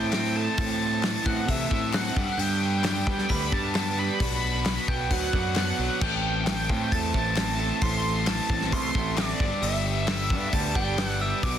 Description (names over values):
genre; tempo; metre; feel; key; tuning
indie rock; 133 BPM; 4/4; straight; A dorian; A4 = 440 Hz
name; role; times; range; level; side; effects
overdriven synth lead; melody; 0.0-11.6 s; D5 to C6; -30 LUFS; right 2 dB; distortion, slapback echo
glockenspiel with hard plastic mallets; second line; 0.0-11.6 s; D6 to C7; -38 LUFS; left 3 dB; none
dark analog pad; sustained chords; 0.0-11.6 s; F#4 to C6; -42 LUFS; right 1 dB; none
biting overdriven guitar; riff; 0.0-11.6 s; G2 to A4; -32 LUFS; left 9 dB; none
electric guitar through a small old amp; riff; 0.0-11.6 s; G2 to E4; -33 LUFS; right 9 dB; wide subtle chorus, slapback echo
growling fingered electric bass; bass; 0.0-11.6 s; G1 to G3; -30 LUFS; equal; overdrive
loose indie drum kit; drums; 0.1-11.5 s; crash cymbal, hi-hat, kick drum, snare drum; -28 LUFS; left 1 dB; none
group handclap; percussion; 0.1-11.1 s; none; -38 LUFS; left 13 dB; none
room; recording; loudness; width
light reverb; dense, heavily limited modern master; -23 LUFS; side -9 dB against mid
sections
0.0-11.6 A section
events
none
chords
0.0 Am; 2.2 G; 4.2 Bm; 6.0 Am; 9.4 G